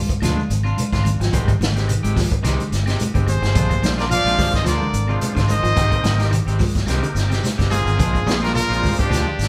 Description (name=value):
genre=afrobeat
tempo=108 BPM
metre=4/4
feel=swing 54% on 16ths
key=Bb mixolydian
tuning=A4 = 440 Hz
part: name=clean electric guitar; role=arpeggios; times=0.0-9.5 s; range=C3 to G3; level=-31 LUFS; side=equal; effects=none
part: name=fingered electric bass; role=bass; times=0.1-9.5 s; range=G1 to D2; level=-23 LUFS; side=equal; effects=none
part: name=vintage drum kit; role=drums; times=0.1-9.5 s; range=hi-hat, kick drum, snare drum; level=-25 LUFS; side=equal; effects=none
part: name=shekere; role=percussion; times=0.1-9.5 s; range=none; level=-33 LUFS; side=equal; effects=none
part: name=electric guitar at the edge of break-up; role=stabs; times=0.2-9.3 s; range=Eb3 to G4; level=-31 LUFS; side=equal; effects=none
part: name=claves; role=percussion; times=0.2-9.3 s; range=none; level=-43 LUFS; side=equal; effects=none
part: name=congas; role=percussion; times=0.4-9.0 s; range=none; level=-30 LUFS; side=equal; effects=none
part: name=brilliant trumpet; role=melody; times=3.3-9.5 s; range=G4 to F5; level=-25 LUFS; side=equal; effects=none
part: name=brilliant bass trombone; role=second line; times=3.3-9.5 s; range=G2 to F3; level=-35 LUFS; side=equal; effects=none
part: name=warm trumpet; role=second line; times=3.3-9.5 s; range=D4 to D5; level=-33 LUFS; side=equal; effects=none
part: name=overdriven tonewheel organ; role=accompaniment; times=3.8-9.1 s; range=Ab3 to Ab4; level=-34 LUFS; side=equal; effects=slow rotary speaker
room=moderate large studio reverb, RT60 1.0 s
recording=band playing live in one room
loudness=-19 LUFS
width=mono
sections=0.0-9.5 A section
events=none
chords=0.0 Bb7 (rootless); 1.3 Abmaj7; 3.5 Bb7; 5.8 Abmaj7; 8.0 Bb7